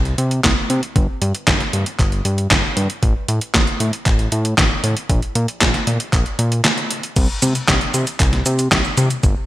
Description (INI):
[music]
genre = italo disco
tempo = 116 BPM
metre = 4/4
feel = straight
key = unclear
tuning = A4 = 440 Hz
[part]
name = fat analog bass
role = bass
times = 0.0-9.3 s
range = G1 to C3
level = -20 LUFS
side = equal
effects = none
[part]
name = detuned 8-bit digital drum machine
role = drums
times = 0.1-9.3 s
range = cabasa, crash cymbal, handclaps, hi-hat, snare drum, toms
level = -18 LUFS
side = equal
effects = studio reverb, gated reverb
[part]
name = electronic kick drum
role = drums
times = 0.4-9.3 s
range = none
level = -18 LUFS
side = equal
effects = studio reverb
[sound]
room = light reverb, digital ambience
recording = bright 1980s-style digital production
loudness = -15 LUFS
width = side -15 dB against mid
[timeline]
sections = 0.0-7.2 A section; 7.2-9.5 B section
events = none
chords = none